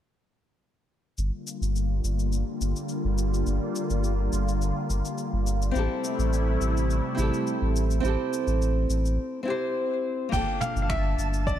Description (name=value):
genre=sunset chillout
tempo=105 BPM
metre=4/4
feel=straight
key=G dorian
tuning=A4 = 437 Hz
part: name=lush unison pad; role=sustained chords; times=1.2-9.2 s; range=C3 to F4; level=-30 LUFS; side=left 1 dB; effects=chorus, phaser
part: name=warm sub bass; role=bass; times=1.2-11.6 s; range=G1 to A1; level=-26 LUFS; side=equal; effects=none
part: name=jazz brush drum kit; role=drums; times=1.2-11.6 s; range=cabasa, crash cymbal, finger snaps, toms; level=-37 LUFS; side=left 2 dB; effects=none
part: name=nylon-string guitar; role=accompaniment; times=5.7-11.6 s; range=Bb3 to C5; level=-28 LUFS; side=moving between left 6 dB and right 5 dB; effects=auto-pan, low-pass filter, ping-pong delay
part: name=bright baby grand piano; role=melody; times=10.3-11.6 s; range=D5 to G5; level=-30 LUFS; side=right 1 dB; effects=none
part: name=electronic kick drum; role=drums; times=10.3-11.6 s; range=none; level=-31 LUFS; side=equal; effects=overdrive
part: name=twinkling granular texture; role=texture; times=10.8-11.6 s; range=A5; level=-38 LUFS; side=right 2 dB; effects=built-in reverb
room=light reverb, small room ambience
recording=dark, warm production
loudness=-24 LUFS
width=side -11 dB against mid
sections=1.2-10.3 A section; 10.3-11.6 B section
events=break 9.2-10.3; filter sweep on nylon-string guitar 10.3-11.6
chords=1.2 Gm7; 5.8 Am7; 10.3 Gm7